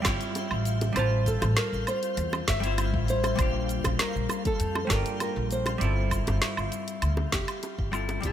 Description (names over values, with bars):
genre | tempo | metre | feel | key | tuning
sunset chillout | 99 BPM | 4/4 | straight | unclear | A4 = 439 Hz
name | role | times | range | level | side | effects
nylon-string guitar | melody | 0.0-8.3 s | G4 to E5 | -32 LUFS | right 1 dB | ping-pong delay
vintage hollow-body jazz guitar | accompaniment | 0.0-8.3 s | G3 to A5 | -32 LUFS | moving between left 9 dB and right 4 dB | auto-pan, ping-pong delay
deep house drum kit | drums | 0.0-8.3 s | hi-hat, shaker, snare drum, woodblock | -32 LUFS | right 1 dB | small room reverb
twinkling granular texture | texture | 0.0-8.3 s | F4 to G6 | -40 LUFS | equal | built-in reverb, wide subtle chorus
upright bass | bass | 0.1-8.3 s | F1 to F2 | -28 LUFS | equal | none
electronic kick drum | drums | 0.1-8.3 s | none | -31 LUFS | equal | small room reverb
bongos | percussion | 0.4-8.2 s | none | -40 LUFS | right 1 dB | none
room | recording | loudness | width
light reverb, digital ambience | bright 1980s-style digital production | -25 LUFS | side -10 dB against mid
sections
0.0-8.3 A section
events
fade-out 6.6-8.3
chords
0.0 Fmaj9; 3.4 Bb6; 5.8 G13sus4